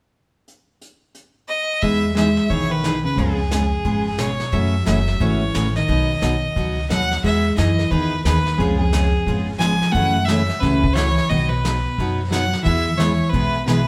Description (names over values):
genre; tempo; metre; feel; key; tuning
country, western swing; 177 BPM; 4/4; swing 62% on 8ths; E major; A4 = 440 Hz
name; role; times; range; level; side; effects
vintage brush drum kit; drums; 0.5-13.9 s; brushed snare drum, hi-hat, kick drum, snare drum; -30 LUFS; equal; none
clear fiddle; melody; 1.5-13.9 s; G#4 to G#5; -26 LUFS; equal; none
hollow-body jazz guitar; second line; 1.8-13.9 s; E#2 to A3; -24 LUFS; equal; none
picked steel-string acoustic guitar; accompaniment; 1.8-13.8 s; B2 to G#4; -26 LUFS; equal; none
upright bass; bass; 1.8-13.9 s; F#1 to F#2; -25 LUFS; equal; none
room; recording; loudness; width
wet stone room reverb, RT60 1.3 s; band playing live in one room; -19 LUFS; mono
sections
0.5-1.8 A section; 1.8-7.2 B section; 7.2-13.9 C section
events
none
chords
0.5 N.C.; 1.8 Emaj7; 3.2 C#7; 4.5 F#m7; 5.9 B; 7.2 Emaj7; 8.6 C#7; 9.9 F#m7; 11.3 B; 12.7 E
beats
| 0.47 0.81 1.15 1.49 | 1.83 2.17 2.50 2.84 | 3.18 3.52 3.85 4.19 | 4.53 4.87 5.21 5.55 | 5.89 6.22 6.56 6.90 | 7.24 7.58 7.92 8.26 | 8.59 8.93 9.27 9.61 | 9.95 10.29 10.63 10.96 | 11.30 11.64 11.98 12.32 | 12.66 13.00 13.34 13.68